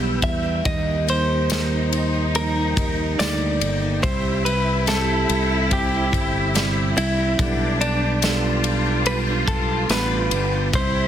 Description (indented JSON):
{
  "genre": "pop ballad",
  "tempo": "72 BPM",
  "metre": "4/4",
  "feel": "straight",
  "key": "unclear",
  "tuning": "A4 = 441 Hz",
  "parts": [
    { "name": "direct-recorded clean electric guitar", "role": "melody", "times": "0.0-11.1 s", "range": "D4 to E5", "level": "-25 LUFS", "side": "equal", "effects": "none" },
    { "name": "rich studio cello section", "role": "second line", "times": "0.0-11.1 s", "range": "D4 to F4", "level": "-28 LUFS", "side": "left 1 dB", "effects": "none" },
    { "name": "bell-like tine electric piano", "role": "accompaniment", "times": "0.0-11.1 s", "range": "B2 to E5", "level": "-27 LUFS", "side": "right 6 dB", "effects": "none" },
    { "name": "tonewheel organ", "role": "sustained chords", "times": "0.0-11.1 s", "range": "Bb3 to E6", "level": "-32 LUFS", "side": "equal", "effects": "overdrive, chorus vibrato, slow rotary speaker" },
    { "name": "picked steel-string acoustic guitar", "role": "arpeggios", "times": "0.0-11.1 s", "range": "C3 to C5", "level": "-32 LUFS", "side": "left 2 dB", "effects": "none" },
    { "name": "fingered electric bass", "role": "bass", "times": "0.0-11.1 s", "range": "G1 to E2", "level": "-24 LUFS", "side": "equal", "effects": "none" },
    { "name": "modern studio drum kit", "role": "drums", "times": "0.2-10.9 s", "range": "kick drum, ride cymbal, snare drum", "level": "-26 LUFS", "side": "left 1 dB", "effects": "soft clipping on kick" },
    { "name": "tambourine", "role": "percussion", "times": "1.5-10.1 s", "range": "none", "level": "-34 LUFS", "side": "left 8 dB", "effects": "none" }
  ],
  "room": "light reverb, small room reverb",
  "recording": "dense, heavily limited modern master, faint mains hum",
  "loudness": "-18 LUFS",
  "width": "side -10 dB against mid",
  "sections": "0.0-11.1 A section",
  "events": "none",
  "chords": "0.0 Em; 0.7 Eb; 4.0 C; 7.4 Gadd9/B"
}